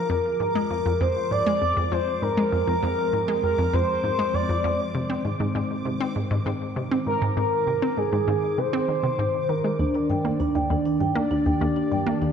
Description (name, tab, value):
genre	ambient, sequencer-driven space music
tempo	99 BPM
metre	4/4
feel	straight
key	F dorian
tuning	A4 = 440 Hz
part	expressive synth lead	melody	0.0-9.8 s	Ab4 to D5	-25 LUFS	equal	wide subtle chorus, ping-pong delay
part	sweeping resonant pad	sustained chords	0.0-12.3 s	D3 to D5	-31 LUFS	equal	chorus
part	resonant blip pluck	riff	0.0-12.3 s	Eb2 to C4	-26 LUFS	equal	chorus, ping-pong delay
part	bubbling stepped-filter texture	texture	0.0-12.3 s	D5 to D6	-38 LUFS	left 1 dB	chorus, built-in reverb
part	vibraphone with soft mallets	arpeggios	9.8-12.3 s	D4 to G5	-24 LUFS	right 1 dB	auto-pan, ping-pong delay
room	wet concert hall reverb, RT60 2.1 s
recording	none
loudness	-22 LUFS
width	side -7 dB against mid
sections	0.0-12.3 A section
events	fade-in on analog synth pad 0.0-12.3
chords	0.1 Fm; 4.9 Ab; 9.8 Ebmaj7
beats	| 0.10 0.70 1.31 1.92 | 2.52 3.13 3.73 4.34 | 4.95 5.55 6.16 6.76 | 7.37 7.98 8.58 9.19 | 9.79 10.40 11.01 11.61 | 12.22